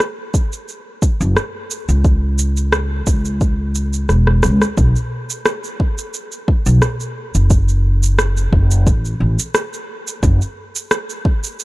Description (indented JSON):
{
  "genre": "organic downtempo",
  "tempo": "88 BPM",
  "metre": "4/4",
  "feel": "swing 54% on 16ths",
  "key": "unclear",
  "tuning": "A4 = 438 Hz",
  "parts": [
    { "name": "electronic rim click and shaker", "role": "drums", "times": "0.0-11.6 s", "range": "none", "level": "-22 LUFS", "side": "equal", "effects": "small room ambience" },
    { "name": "electronic kick drum", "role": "drums", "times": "0.3-11.4 s", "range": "none", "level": "-15 LUFS", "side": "equal", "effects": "overdrive, small room ambience" },
    { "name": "upright bass", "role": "bass", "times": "1.2-10.4 s", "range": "E1 to C#2", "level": "-14 LUFS", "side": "equal", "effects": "sidechain pumping" }
  ],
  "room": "little or no reverb",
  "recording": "dark, warm production",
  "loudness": "-14 LUFS",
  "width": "side -20 dB against mid",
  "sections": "0.0-4.8 A section; 4.8-11.6 B section",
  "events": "drum fill 4.1-4.8",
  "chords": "none"
}